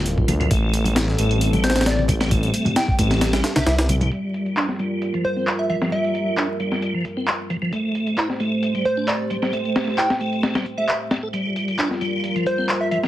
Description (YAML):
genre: breakbeat, breaks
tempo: 133 BPM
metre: 4/4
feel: swing 53% on 16ths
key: unclear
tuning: A4 = 437 Hz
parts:
  - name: dark analog pad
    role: sustained chords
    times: 0.0-13.1 s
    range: G3 to C5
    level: -27 LUFS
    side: equal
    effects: chorus, phaser, sidechain pumping
  - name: tonewheel organ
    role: riff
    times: 0.0-13.1 s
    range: F3 to A4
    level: -25 LUFS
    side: equal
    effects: overdrive, chorus vibrato, fast rotary speaker, tube saturation, low-pass filter, ping-pong delay
  - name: detuned saw bass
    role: bass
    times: 0.0-4.1 s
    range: D1 to D2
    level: -21 LUFS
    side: equal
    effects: none
  - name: breakbeat sampler-style drum kit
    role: drums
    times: 0.1-13.1 s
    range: hi-hat, kick drum, snare drum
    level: -23 LUFS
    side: left 1 dB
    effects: low-pass filter on snare, low-pass filter on hats, low-pass filter on kick
  - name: punchy analog drum machine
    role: drums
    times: 0.1-12.8 s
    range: handclaps, hi-hat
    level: -25 LUFS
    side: equal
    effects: low-pass filter on hats, low-pass filter on snare
  - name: congas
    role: percussion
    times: 0.3-4.1 s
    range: none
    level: -25 LUFS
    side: left 1 dB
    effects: none
  - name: plucky unison lead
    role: melody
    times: 1.6-13.0 s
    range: C5 to G5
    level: -24 LUFS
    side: right 1 dB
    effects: small speaker sound, ping-pong delay
room: light reverb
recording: heavily compressed radio sound, vinyl crackle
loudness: -19 LUFS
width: side -13 dB against mid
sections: 0.0-4.1 A section; 4.1-13.1 B section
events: filter sweep on tonewheel organ 4.1-13.1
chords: 0.0 Gm7; 0.5 Am7; 4.1 Gm7; 7.7 Am7; 11.3 Gm7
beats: 0.06 | 0.51 0.96 1.41 1.86 | 2.31 2.77 3.22 3.67 | 4.12 4.57 5.02 5.47 | 5.92 6.37 6.83 7.28 | 7.73 8.18 8.63 9.08 | 9.53 9.98 10.43 10.88 | 11.34 11.79 12.24 12.69